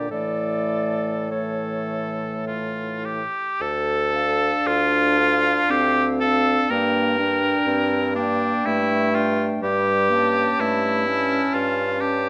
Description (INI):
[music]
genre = classical, slow romantic movement for wind quintet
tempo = 49-64 BPM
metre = 3/4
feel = rubato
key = D minor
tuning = A4 = 440 Hz
[part]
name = concert flute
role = melody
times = 0.0-12.3 s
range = C#5 to A5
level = -32 LUFS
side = equal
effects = none
[part]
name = clear oboe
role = second line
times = 0.0-12.3 s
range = D4 to Bb4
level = -25 LUFS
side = equal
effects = none
[part]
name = dark clarinet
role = accompaniment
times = 0.0-12.2 s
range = G3 to D4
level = -29 LUFS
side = equal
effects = none
[part]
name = warm French horn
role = accompaniment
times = 0.0-12.3 s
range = E3 to D4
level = -33 LUFS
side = equal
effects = none
[part]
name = clear bassoon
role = bass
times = 0.0-12.3 s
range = D2 to A2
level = -28 LUFS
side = equal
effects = none
[sound]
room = moderate recital hall reverb, RT60 1.4 s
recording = close, detailed microphones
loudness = -21 LUFS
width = mono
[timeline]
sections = 0.0-3.6 A section; 3.6-12.3 B section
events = none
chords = 0.1 A; 3.6 Dm; 6.7 Gm; 9.6 A7/G